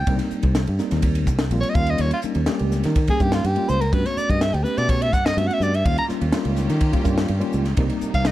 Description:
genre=electric jazz fusion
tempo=125 BPM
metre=4/4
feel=straight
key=Eb mixolydian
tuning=A4 = 437 Hz
part: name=clear soprano saxophone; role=melody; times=0.0-8.3 s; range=F4 to Bb5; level=-24 LUFS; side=equal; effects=none
part: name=fretless electric bass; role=bass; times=0.0-8.3 s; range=Bb1 to Eb3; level=-22 LUFS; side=equal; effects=none
part: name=tine electric piano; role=accompaniment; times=0.1-8.3 s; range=G3 to G4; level=-26 LUFS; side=equal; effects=medium stereo tremolo
part: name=crisp fusion drum kit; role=drums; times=0.1-8.3 s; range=hi-hat, kick drum, ride cymbal, snare drum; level=-24 LUFS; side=equal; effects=none
part: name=clear symphonic string section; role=sustained chords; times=5.8-8.3 s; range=C3 to G4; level=-33 LUFS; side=equal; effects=none
room=light reverb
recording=dark, warm production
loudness=-18 LUFS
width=side -14 dB against mid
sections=0.0-8.3 A section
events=soprano saxophone solo 0.0-8.3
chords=0.1 Cm7; 1.8 Eb9; 3.9 Gmaj9#11; 5.8 Eb9; 7.8 Cm7

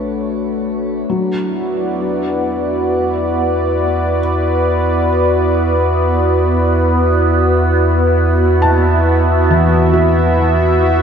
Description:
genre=ambient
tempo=free time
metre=none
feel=none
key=unclear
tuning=A4 = 440 Hz
part: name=warm analog pad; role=sustained chords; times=0.0-11.0 s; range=A3 to E5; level=-15 LUFS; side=right 1 dB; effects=chorus, shimmer reverb
part: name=warm sub bass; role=bass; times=0.0-11.0 s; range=B1 to E2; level=-17 LUFS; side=equal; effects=none
part: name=felt-muted upright piano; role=arpeggios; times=1.1-11.0 s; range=E3 to A5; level=-20 LUFS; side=left 2 dB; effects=ping-pong delay, shimmer reverb
part: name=overtone-sweeping drone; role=drone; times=1.5-11.0 s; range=B3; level=-20 LUFS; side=equal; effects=chorus, built-in reverb, phaser
room=wet cathedral reverb, RT60 6.4 s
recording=in a vast, echoing space, cassette tape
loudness=-12 LUFS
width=side -7 dB against mid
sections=0.0-11.0 A section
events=filter sweep on analog synth pad 0.0-11.0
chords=0.0 Bm9; 1.1 Esus2

